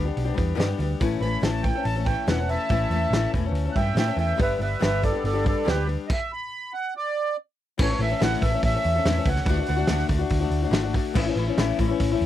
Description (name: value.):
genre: folk rock and heartland rock.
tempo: 142 BPM.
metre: 4/4.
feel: straight.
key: A major from 7.8 s.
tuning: A4 = 445 Hz.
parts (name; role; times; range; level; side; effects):
picked old ladder-braced acoustic guitar; accompaniment; 0.0-12.3 s; G2 to A4; -27 LUFS; left 8 dB; none.
hollow-body short-scale picked electric bass; bass; 0.0-12.3 s; E1 to A2; -26 LUFS; right 1 dB; none.
loose indie drum kit; drums; 0.2-12.3 s; crash cymbal, hi-hat, kick drum, snare drum; -26 LUFS; right 1 dB; none.
accordion; melody; 1.2-10.1 s; G4 to B5; -27 LUFS; right 2 dB; light tremolo tuning.
room: little or no reverb.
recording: dry, close 1970s-style studio recording.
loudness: -22 LUFS.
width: side -12 dB against mid.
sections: 0.0-7.8 A section; 7.8-12.3 B section.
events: accordion solo 0.0-7.8; stop 6.1-7.8.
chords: 0.0 G; 1.0 A; 4.4 G; 6.1 N.C.; 7.8 A; 9.5 D; 11.2 A.